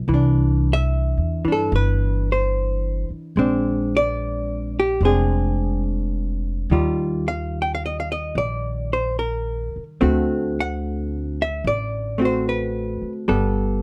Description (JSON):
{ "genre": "jazz ballad", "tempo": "73 BPM", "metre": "4/4", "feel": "swing 68% on 8ths", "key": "unclear", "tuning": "A4 = 435 Hz", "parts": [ { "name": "hollow-body jazz guitar", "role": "accompaniment", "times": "0.0-13.8 s", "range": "D3 to G5", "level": "-24 LUFS", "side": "equal", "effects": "none" }, { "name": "upright bass", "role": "bass", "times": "0.0-13.8 s", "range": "F1 to G2", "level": "-25 LUFS", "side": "equal", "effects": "none" } ], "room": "light reverb", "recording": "dark, warm production", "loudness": "-22 LUFS", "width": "mono", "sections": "0.0-13.8 A section", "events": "none", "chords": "0.1 Cadd9; 3.4 Bb9; 6.7 Ebadd9; 10.0 D7; 13.3 Gadd9" }